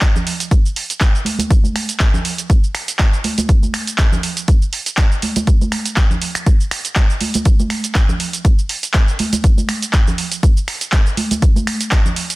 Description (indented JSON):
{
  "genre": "house",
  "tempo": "121 BPM",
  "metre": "4/4",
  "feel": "swing 55% on 16ths",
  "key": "none",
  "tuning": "none",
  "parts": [
    { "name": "electronic kick drum", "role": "drums", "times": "0.0-12.0 s", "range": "none", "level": "-13 LUFS", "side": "equal", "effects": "none" },
    { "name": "punchy analog drum machine", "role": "drums", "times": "0.0-12.4 s", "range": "finger snaps, handclaps, hi-hat, shaker", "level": "-20 LUFS", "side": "right 2 dB", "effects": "none" },
    { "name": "tambourine and congas", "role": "percussion", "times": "0.0-12.4 s", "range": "none", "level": "-22 LUFS", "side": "right 2 dB", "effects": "sidechain pumping on perc, low-pass filter on perc" }
  ],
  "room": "little or no reverb",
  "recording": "dense, heavily limited modern master",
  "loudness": "-14 LUFS",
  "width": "side -21 dB against mid",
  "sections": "0.0-12.4 A section",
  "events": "filter sweep on drum 0.0-12.4",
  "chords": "none",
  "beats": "0.02 0.51 1.01 | 1.51 2.00 2.50 2.99 | 3.49 3.98 4.48 4.98 | 5.47 5.97 6.46 6.96 | 7.46 7.95 8.45 8.94 | 9.44 9.94 10.43 10.93 | 11.42 11.92"
}